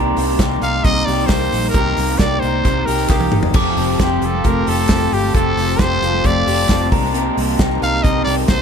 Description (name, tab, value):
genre	jangly indie pop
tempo	133 BPM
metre	4/4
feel	straight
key	unclear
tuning	A4 = 439 Hz
part	glockenspiel with soft plastic mallets	second line	0.0-8.6 s	A5 to Eb6	-28 LUFS	right 6 dB	dub echo
part	electric guitar through a small old amp	accompaniment	0.0-8.6 s	C3 to Bb4	-22 LUFS	right 2 dB	analog chorus, dub echo
part	electric guitar through a small old amp	arpeggios	0.0-8.6 s	C3 to G4	-22 LUFS	left 3 dB	dub echo
part	vintage muted fingered electric bass	bass	0.0-8.6 s	F1 to C2	-22 LUFS	equal	none
part	modern studio drum kit	drums	0.2-8.6 s	crash cymbal, hi-hat, kick drum, snare drum, toms	-19 LUFS	equal	dub echo
part	group handclap	percussion	0.4-8.6 s	none	-32 LUFS	left 3 dB	none
part	growling trumpet	melody	0.6-8.6 s	G4 to F5	-21 LUFS	equal	dub echo
part	overdriven combo organ	accompaniment	3.5-8.6 s	C4 to Bb4	-27 LUFS	left 5 dB	none
room	light reverb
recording	echo-heavy mix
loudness	-14 LUFS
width	side -7 dB against mid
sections	0.0-8.6 A section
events	drum fill 3.1-3.5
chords	0.0 Cm7; 3.5 Fadd9; 6.9 Cm7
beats	0.39 0.84 1.29 | 1.75 2.20 2.65 3.10 | 3.55 4.00 4.45 4.90 | 5.35 5.80 6.25 6.70 | 7.14 7.59 8.04 8.49